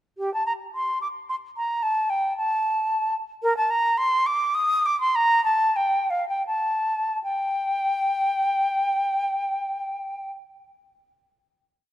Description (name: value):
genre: classical, baroque-style fantasia for unaccompanied flute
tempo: 74-114 BPM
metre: 3/4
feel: rubato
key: G minor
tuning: A4 = 439 Hz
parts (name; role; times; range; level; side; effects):
- silver concert flute; solo; 0.2-10.3 s; G4 to Eb6; -22 LUFS; equal; none
room: moderate concert hall reverb, RT60 2.1 s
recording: close, detailed microphones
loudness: -22 LUFS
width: side -13 dB against mid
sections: 0.2-7.2 A section; 7.2-11.7 final note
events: slowing down 2.6-7.2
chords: none